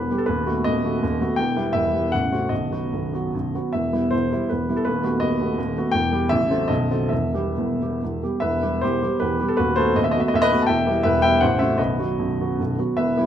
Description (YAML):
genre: classical, romantic triple-time dance for piano with dotted rhythms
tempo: 125-178 BPM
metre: 3/4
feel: rubato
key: E minor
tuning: A4 = 440 Hz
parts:
  - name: clear baby grand piano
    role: solo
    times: 0.0-13.3 s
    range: A0 to A5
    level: -19 LUFS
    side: equal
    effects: none
room: wet recital hall reverb, RT60 1.4 s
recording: close, detailed microphones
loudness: -19 LUFS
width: side -10 dB against mid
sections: 0.0-8.4 A section; 8.4-13.3 A section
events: none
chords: 0.3 B7/D#; 1.4 Em; 2.1 F#dim/A; 2.5 B; 3.7 Em; 4.9 B7/D#; 5.9 Em; 6.3 F#dim/A; 6.7 B7b9; 7.1 Em; 9.6 B7/D#; 10.7 Em; 11.4 F#dim/A; 11.8 B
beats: | 0.27 0.65 1.03 | 1.38 1.74 2.13 | 2.51 2.93 3.34 | 3.74 4.13 4.51 | 4.86 5.22 5.58 | 5.93 6.31 6.70 | 7.11 7.57 8.02 | 8.42 8.82 9.21 | 9.58 9.96 10.33 | 10.68 11.04 11.41 | 11.79 12.19 12.59 | 12.98